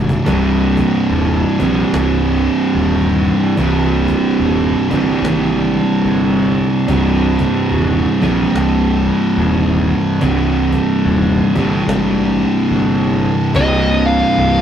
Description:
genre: stoner and doom metal.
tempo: 72 BPM.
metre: 4/4.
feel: swing 61% on 8ths.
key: C minor.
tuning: A4 = 440 Hz.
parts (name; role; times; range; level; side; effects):
fuzz guitar; riff; 0.0-14.6 s; C2 to C3; -15 LUFS; right 3 dB; distortion.
thick fuzz guitar; riff; 0.0-14.6 s; C2 to C3; -19 LUFS; left 3 dB; distortion.
fuzz fingered electric bass; bass; 0.0-14.6 s; C1 to Bb1; -19 LUFS; left 1 dB; overdrive.
cajon; drums; 0.1-13.8 s; none; -22 LUFS; left 1 dB; none.
fuzz lead guitar; melody; 13.6-14.6 s; Eb5 to F5; -15 LUFS; left 1 dB; distortion.
room: wet studio reverb, RT60 0.6 s.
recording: rough rehearsal-room recording, tube saturation.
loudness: -12 LUFS.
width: side -9 dB against mid.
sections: 0.3-13.5 A section; 13.5-14.6 B section.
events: drum fill 0.0; kick and snare drop out 12.7-13.5; lead electric guitar solo 13.5-14.6.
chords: 0.3 Cm.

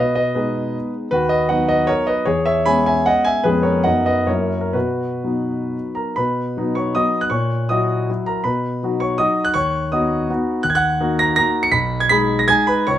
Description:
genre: classical, romantic triple-time dance for piano with dotted rhythms.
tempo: 116-178 BPM.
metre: 3/4.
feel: rubato.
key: B major.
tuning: A4 = 440 Hz.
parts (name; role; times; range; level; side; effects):
warm concert grand piano; solo; 0.0-13.0 s; B1 to C#7; -16 LUFS; equal; none.
room: light reverb.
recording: none.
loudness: -16 LUFS.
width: side -11 dB against mid.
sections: 0.0-6.2 A section; 6.2-13.0 B section.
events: none.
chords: 0.0 G#m/B; 1.1 B/D#; 2.3 C#m7/E; 3.5 C#7/E#; 3.9 B/F#; 4.3 F#7; 4.7 B; 7.3 F#7/A#; 8.4 B; 9.5 B/D#; 10.6 D#m; 11.7 G#m/B.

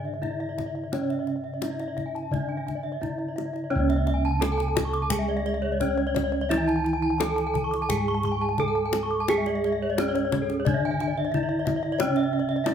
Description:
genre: Balinese gamelan.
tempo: 86 BPM.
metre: 4/4.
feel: straight.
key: C# pelog.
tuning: A4 = 440 Hz.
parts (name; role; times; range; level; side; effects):
gamelan-type bronze metallophone; melody; 0.0-12.7 s; C#4 to A4-20c; -28 LUFS; right 3 dB; none.
gamelan-type bronze metallophone; accompaniment; 0.0-12.7 s; C#3 to G#3-30c; -34 LUFS; right 1 dB; none.
gamelan-type bronze metallophone; arpeggios; 0.0-12.7 s; G#4-30c to D6+20c; -31 LUFS; left 7 dB; none.
gamelan-type bossed gongs; bass; 0.0-12.7 s; C#2 to G#4-30c; -30 LUFS; right 1 dB; none.
gamelan-type bronze metallophone; arpeggios; 0.1-12.6 s; A4-20c to C#6; -34 LUFS; right 3 dB; none.
kendang; percussion; 0.2-12.7 s; none; -30 LUFS; left 5 dB; none.
room: moderate large studio reverb, RT60 0.9 s.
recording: band playing live in one room.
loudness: -24 LUFS.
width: side -8 dB against mid.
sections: 0.0-12.7 A section.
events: none.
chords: none.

